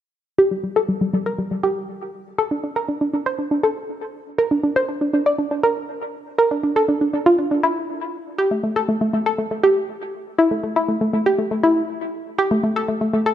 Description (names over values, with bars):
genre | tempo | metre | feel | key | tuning
house | 120 BPM | 4/4 | straight | G dorian | A4 = 440 Hz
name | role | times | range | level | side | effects
analog pluck | arpeggios | 0.4-13.3 s | G3 to D5 | -18 LUFS | equal | chorus, dub echo
room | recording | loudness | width
moderate recital hall reverb, RT60 1.7 s | none | -18 LUFS | side -10 dB against mid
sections
0.4-13.3 A section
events
none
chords
none